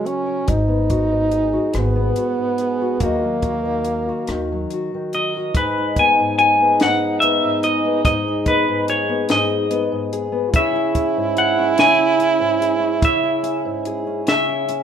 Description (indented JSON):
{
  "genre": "acoustic folk-pop ballad",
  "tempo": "48 BPM (dotted quarters)",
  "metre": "6/8",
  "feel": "straight",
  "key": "G# minor",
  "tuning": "A4 = 440 Hz",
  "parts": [
    { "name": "clear French horn", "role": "second line", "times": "0.0-14.8 s", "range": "A#3 to F#4", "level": "-21 LUFS", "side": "right 4 dB", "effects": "none" },
    { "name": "fingerpicked steel-string acoustic guitar", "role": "accompaniment", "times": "0.0-14.8 s", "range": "G#2 to D#5", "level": "-23 LUFS", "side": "left 4 dB", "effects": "none" },
    { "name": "compact cocktail drum kit", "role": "drums", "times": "0.1-14.8 s", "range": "hi-hat, kick drum, rim click, snare drum", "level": "-22 LUFS", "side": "equal", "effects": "none" },
    { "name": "upright bass", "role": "bass", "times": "0.5-4.6 s", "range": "G#1 to D#2", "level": "-23 LUFS", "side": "equal", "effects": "none" },
    { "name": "clean electric guitar", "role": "melody", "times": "5.1-14.8 s", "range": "B4 to G#5", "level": "-18 LUFS", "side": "left 1 dB", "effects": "tremolo" }
  ],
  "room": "moderate large studio reverb, RT60 1.2 s",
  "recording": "minimal, uncompressed stereo recording",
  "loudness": "-16 LUFS",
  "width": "side -8 dB against mid",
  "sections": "0.0-5.5 A section; 5.5-14.8 B section",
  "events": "French horn solo 0.0-5.5",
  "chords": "0.5 G#m7; 3.0 D#m; 5.5 G#m; 10.5 C#m",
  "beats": "| 0.49 1.75 | 3.01 4.27 | 5.54 6.79 | 8.04 9.29 | 10.53 11.77 | 13.02 14.26"
}